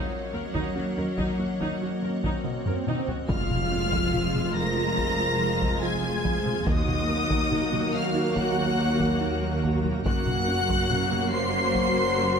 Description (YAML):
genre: cinematic, hybrid orchestral and electronic film score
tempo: 71 BPM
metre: 4/4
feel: straight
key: F phrygian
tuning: A4 = 440 Hz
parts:
  - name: clear symphonic violin section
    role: melody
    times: 0.0-12.4 s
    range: Gb5 to C7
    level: -32 LUFS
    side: left 2 dB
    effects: none
  - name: rich symphonic violin section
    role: second line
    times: 0.0-12.4 s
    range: Db5 to C6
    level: -33 LUFS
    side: left 1 dB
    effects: none
  - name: rich symphonic viola section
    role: accompaniment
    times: 0.0-12.4 s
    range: Ab3 to Bb4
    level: -32 LUFS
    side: right 1 dB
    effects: none
  - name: mellow French horn section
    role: sustained chords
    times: 0.0-12.4 s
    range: Eb4 to Db5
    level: -32 LUFS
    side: left 4 dB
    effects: none
  - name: soft additive organ-like pad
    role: sustained chords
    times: 0.0-12.4 s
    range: Gb3 to Eb5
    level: -34 LUFS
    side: equal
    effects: ensemble chorus, built-in reverb
  - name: thumb-piano-like synth pluck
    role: arpeggios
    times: 0.0-12.3 s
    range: Eb3 to Gb4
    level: -36 LUFS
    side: right 2 dB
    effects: none
  - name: rich symphonic cello section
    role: bass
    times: 0.0-12.4 s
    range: Eb2 to Gb3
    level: -32 LUFS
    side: equal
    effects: none
  - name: swell and impact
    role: sound effects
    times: 2.4-6.7 s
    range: none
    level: -35 LUFS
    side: equal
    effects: none
  - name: warm symphonic double bass section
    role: bass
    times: 0.3-12.4 s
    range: F1 to Eb2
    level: -33 LUFS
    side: right 3 dB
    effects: none
  - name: taiko ensemble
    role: drums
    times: 0.5-12.4 s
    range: none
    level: -31 LUFS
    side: equal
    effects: none
  - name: mellow trombone section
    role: sustained chords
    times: 3.3-12.4 s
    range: F3 to Bb3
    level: -33 LUFS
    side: right 4 dB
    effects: none
room: moderate scoring stage reverb, RT60 1.8 s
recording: close, detailed microphones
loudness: -23 LUFS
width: side -6 dB against mid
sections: 0.0-3.3 A section; 3.3-12.4 B section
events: swell 2.4-3.3; drum fill 2.4-3.3; impact 3.3-6.7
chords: 0.0 Ebm7; 3.3 Fm; 6.7 Ebm; 10.1 Gb